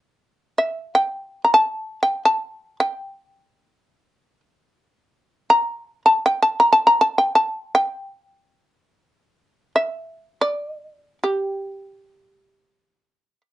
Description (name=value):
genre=japanese traditional, Japanese chamber music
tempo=free time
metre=none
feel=none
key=G kumoi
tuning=A4 = 440 Hz
part: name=shamisen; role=solo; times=0.6-13.4 s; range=G4 to Bb5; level=-17 LUFS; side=equal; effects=none
room=light reverb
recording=dark, warm production, nothing above 11.0 kHz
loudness=-18 LUFS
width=side -14 dB against mid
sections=0.0-13.5 A section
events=none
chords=none